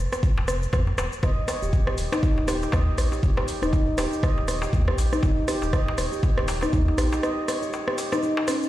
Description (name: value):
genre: afro house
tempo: 120 BPM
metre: 4/4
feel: swing 58% on 16ths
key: unclear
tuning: A4 = 440 Hz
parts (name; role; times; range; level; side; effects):
- round analog bass; bass; 0.0-7.1 s; Eb1 to F2; -26 LUFS; equal; sidechain pumping
- afro-pop drum kit; drums; 0.1-8.7 s; cabasa, hi-hat, rim click; -29 LUFS; equal; none
- darbuka; percussion; 0.1-8.5 s; none; -36 LUFS; left 2 dB; none
- electronic kick drum; drums; 0.2-6.8 s; none; -22 LUFS; equal; none
- handpan; arpeggios; 1.2-8.6 s; Db4 to Eb5; -27 LUFS; equal; sidechain pumping, ping-pong delay
room: light reverb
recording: played on a big sound system in a bare room, stone room reverb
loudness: -21 LUFS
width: side -14 dB against mid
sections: 0.0-8.7 A section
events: break 7.2-8.7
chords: 0.0 F5; 1.2 Eb